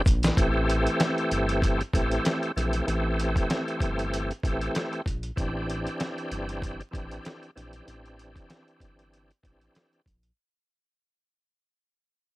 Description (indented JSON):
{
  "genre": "hip hop, boom-bap hip-hop",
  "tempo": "96 BPM",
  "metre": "4/4",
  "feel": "swing 55% on 16ths",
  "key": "A minor",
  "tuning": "A4 = 440 Hz",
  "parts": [
    { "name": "bright tonewheel organ", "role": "accompaniment", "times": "0.0-10.0 s", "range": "E3 to G4", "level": "-28 LUFS", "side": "equal", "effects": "overdrive, chorus vibrato, fast rotary speaker, cassette tape" },
    { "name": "smooth synth bass", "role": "bass", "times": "0.1-10.3 s", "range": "G1 to Bb1", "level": "-31 LUFS", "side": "equal", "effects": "transformer saturation" },
    { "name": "dusty soul sampler-style drum kit", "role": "drums", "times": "0.1-10.4 s", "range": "hi-hat, kick drum, snare drum", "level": "-27 LUFS", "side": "equal", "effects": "none" }
  ],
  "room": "light reverb",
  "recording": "dry, gritty hardware recording, vinyl crackle",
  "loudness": "-25 LUFS",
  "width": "side -18 dB against mid",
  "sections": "0.4-10.4 A section",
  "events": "drum fill 0.0-0.4; fade-out 0.4-10.4",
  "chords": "0.4 Am7; 5.4 D9sus4",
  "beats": "| 0.37 1.00 1.62 2.25 | 2.87 3.50 4.12 4.75 | 5.37 6.00 6.62 7.25 | 7.87 8.50 9.12 9.75"
}